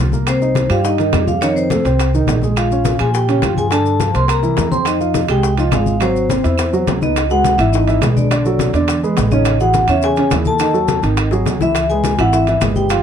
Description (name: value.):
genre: Afro-Cuban jazz.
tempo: 209 BPM.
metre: 4/4.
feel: straight.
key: F minor, C# minor from 7.2 s.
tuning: A4 = 440 Hz.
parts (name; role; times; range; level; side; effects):
dark grand piano; accompaniment; 0.0-13.0 s; Db3 to F5; -19 LUFS; right 4 dB; none.
upright bass; bass; 0.0-13.0 s; G1 to Bb2; -18 LUFS; equal; none.
bongos; percussion; 0.1-13.0 s; none; -26 LUFS; left 8 dB; none.
congas; percussion; 0.1-13.0 s; none; -23 LUFS; left 4 dB; none.
maracas; percussion; 0.1-13.0 s; none; -34 LUFS; left 10 dB; none.
vibraphone with medium hard mallets; melody; 0.3-13.0 s; C5 to C6; -19 LUFS; equal; none.
mellow hollow concert flute; second line; 0.3-13.0 s; C4 to C5; -22 LUFS; left 6 dB; none.
claves; percussion; 0.3-13.0 s; none; -29 LUFS; right 10 dB; none.
timbales; percussion; 0.3-13.0 s; none; -27 LUFS; right 8 dB; none.
room: light reverb.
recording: dark, warm production.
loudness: -13 LUFS.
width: side -8 dB against mid.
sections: 0.0-7.2 A section; 7.2-13.0 B section.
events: drum fill 11.3-11.8.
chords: 0.3 Cm7; 1.4 F7; 2.6 Bbm7; 3.7 Gm9; 4.3 C7; 4.9 Fm9; 6.0 Ab7alt; 7.2 C#m11; 8.3 Bm7; 8.9 E6; 9.5 Amaj7; 10.6 D#dim; 11.2 G#5; 11.8 C#m7.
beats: | 0.27 0.56 0.84 1.13 | 1.42 1.71 1.99 2.28 | 2.57 2.85 3.14 3.43 | 3.72 4.00 4.29 4.58 | 4.87 5.15 5.44 5.73 | 6.01 6.30 6.59 6.88 | 7.16 7.45 7.74 8.02 | 8.31 8.60 8.88 9.17 | 9.46 9.74 10.03 10.32 | 10.61 10.89 11.18 11.47 | 11.76 12.04 12.33 12.62 | 12.90.